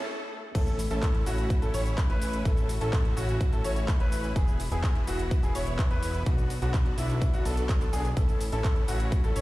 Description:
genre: EDM, festival progressive house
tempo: 126 BPM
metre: 4/4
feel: straight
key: A major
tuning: A4 = 440 Hz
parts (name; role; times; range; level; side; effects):
- dark chamber string section; sustained chords; 0.0-9.4 s; B2 to F#4; -41 LUFS; left 1 dB; sidechain pumping
- big supersaw lead; riff; 0.0-9.4 s; B3 to C#5; -37 LUFS; equal; sidechain pumping, ping-pong delay
- fat analog bass; bass; 0.0-9.4 s; E1 to B1; -30 LUFS; equal; sidechain pumping
- riser, swell and impact; sound effects; 0.0-2.5 s; none; -41 LUFS; equal; none
- electronic kick drum; drums; 0.5-9.2 s; none; -26 LUFS; equal; overdrive
- clear concert grand piano; arpeggios; 0.6-9.4 s; E4 to C#5; -35 LUFS; left 1 dB; sidechain pumping, ping-pong delay
- big-room dance drum kit; drums; 0.6-9.4 s; cabasa, crash cymbal, handclaps, hi-hat; -40 LUFS; right 1 dB; overdrive
room: small room ambience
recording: played on a big sound system in a bare room, stone room reverb, high-pass filter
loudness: -25 LUFS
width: side -18 dB against mid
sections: 0.5-9.4 A section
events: swell 0.0-0.5; stop 0.1-0.5; drop 0.5-9.4; impact 0.5-2.5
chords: 0.0 N.C.; 0.5 A; 4.4 E; 6.3 Bm; 8.2 A

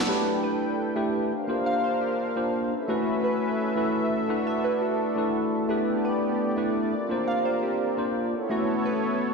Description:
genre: drum and bass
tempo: 171 BPM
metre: 4/4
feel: straight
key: A dorian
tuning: A4 = 440 Hz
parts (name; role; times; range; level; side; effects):
- tine electric piano; accompaniment; 0.0-9.3 s; F#3 to C5; -26 LUFS; equal; wide subtle chorus, diffuse ambient delay
- warm analog pad; sustained chords; 0.0-9.3 s; B3 to G5; -29 LUFS; equal; chorus, tremolo
- harp-like synth pluck; arpeggios; 0.1-8.9 s; F#4 to F5; -32 LUFS; right 1 dB; chorus, diffuse ambient delay
room: wet lush hall reverb, RT60 1.6 s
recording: dreamy mix soaked in reverb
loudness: -24 LUFS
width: side -4 dB against mid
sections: 0.1-9.3 A section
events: none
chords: 0.1 A9sus4; 1.3 C9sus4; 2.7 B9sus4; 4.3 E9sus4; 5.7 A9sus4; 6.9 C9sus4; 8.3 B9sus4

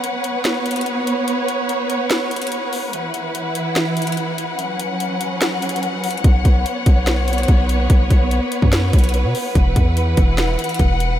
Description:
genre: hip hop, trap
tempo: 145 BPM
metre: 4/4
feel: half-time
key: unclear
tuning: A4 = 440 Hz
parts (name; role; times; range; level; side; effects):
- warm studio string section; sustained chords; 0.0-11.2 s; E3 to F#5; -20 LUFS; equal; none
- trap drum kit; drums; 0.0-11.1 s; finger snaps, hi-hat, kick drum, snare drum; -19 LUFS; equal; none
- hard-hitting 808-style bass; bass; 6.2-11.2 s; E1 to B2; -18 LUFS; equal; none
room: moderate huge ambient reverb, RT60 5.7 s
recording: dreamy mix soaked in reverb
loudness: -16 LUFS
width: side -12 dB against mid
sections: 0.0-11.2 A section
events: break 0.0-6.2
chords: 0.0 Bsus2; 2.9 Esus2; 4.6 F#sus4; 6.2 Bsus2; 9.6 Esus2

